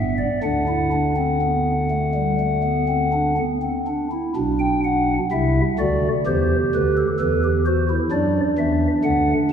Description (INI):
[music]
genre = classical, baroque-style 3-part fugue for pipe organ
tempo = 60-65 BPM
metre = 4/4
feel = straight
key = G major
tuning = A4 = 440 Hz
[part]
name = pipe organ, stopped flute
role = solo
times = 0.0-9.5 s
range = G1 to G5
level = -18 LUFS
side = equal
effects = none
[sound]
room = wet church reverb, RT60 3.3 s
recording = recorded in a church or concert hall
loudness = -18 LUFS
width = side -8 dB against mid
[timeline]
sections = 0.0-4.4 A section; 4.4-9.5 B section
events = none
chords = 0.4 D; 4.4 G/B (rootless); 6.3 C; 8.1 D